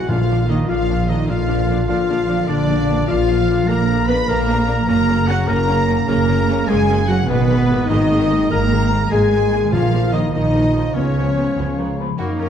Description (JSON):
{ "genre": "cinematic, heroic adventure film score", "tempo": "100 BPM (dotted quarters)", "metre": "12/8", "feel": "straight", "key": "unclear", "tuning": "A4 = 441 Hz", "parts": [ { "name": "warm symphonic violin section", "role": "melody", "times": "0.0-12.5 s", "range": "A#3 to Cb6", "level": "-31 LUFS", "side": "left 4 dB", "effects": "none" }, { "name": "clear clarinet", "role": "second line", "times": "0.0-12.5 s", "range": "A#3 to Cb5", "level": "-27 LUFS", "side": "left 1 dB", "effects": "none" }, { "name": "warm oboe", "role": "second line", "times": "0.0-12.5 s", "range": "A#3 to Cb6", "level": "-30 LUFS", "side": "right 2 dB", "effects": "none" }, { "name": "warm symphonic violin section", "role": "second line", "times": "0.0-12.5 s", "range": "F#4 to Cb6", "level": "-30 LUFS", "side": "left 3 dB", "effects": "none" }, { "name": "dark French horn section", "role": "sustained chords", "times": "0.0-12.5 s", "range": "A#3 to Cb5", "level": "-21 LUFS", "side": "left 5 dB", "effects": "none" }, { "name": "dark trombone section", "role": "sustained chords", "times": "0.0-12.5 s", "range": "C#3 to Cb4", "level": "-29 LUFS", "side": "right 3 dB", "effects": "none" }, { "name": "concert harp", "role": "arpeggios", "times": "0.0-12.5 s", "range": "Gb2 to D6", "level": "-26 LUFS", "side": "left 8 dB", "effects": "none" }, { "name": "clear trumpet section", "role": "stabs", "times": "0.0-12.5 s", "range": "Cb5 to Cb6", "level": "-28 LUFS", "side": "right 1 dB", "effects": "none" }, { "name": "clear symphonic double bass section", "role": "bass", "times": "0.0-12.5 s", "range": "Gb1 to F#2", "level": "-21 LUFS", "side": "right 3 dB", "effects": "none" }, { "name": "dark symphonic cello section", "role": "bass", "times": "0.0-12.5 s", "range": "Cb3 to D#4", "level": "-22 LUFS", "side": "right 4 dB", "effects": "none" }, { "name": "rich symphonic viola section", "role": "accompaniment", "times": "0.1-12.5 s", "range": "F3 to D4", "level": "-29 LUFS", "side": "right 1 dB", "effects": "none" }, { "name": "timpani", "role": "percussion", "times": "0.1-0.7, 9.7-10.3 s", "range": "Bb2", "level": "-24 LUFS", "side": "equal", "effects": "none" }, { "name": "mellow hollow small flute group", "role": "second line", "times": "11.6-12.5 s", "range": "Ab5 to C#6", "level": "-32 LUFS", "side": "left 5 dB", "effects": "none" } ], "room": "moderate scoring stage reverb, RT60 1.7 s", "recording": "dark, warm production", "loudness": "-15 LUFS", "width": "side -8 dB against mid", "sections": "0.0-12.2 A section", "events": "none", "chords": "0.1 Bb; 4.9 Gb; 7.3 Abmadd9; 9.7 Bbsus4; 10.9 Db7", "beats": "| 0.09 0.69 1.29 1.89 | 2.49 3.09 3.69 4.29 | 4.88 5.48 6.08 6.68 | 7.29 7.89 8.50 9.11 | 9.72 10.33 10.95 11.57 | 12.18" }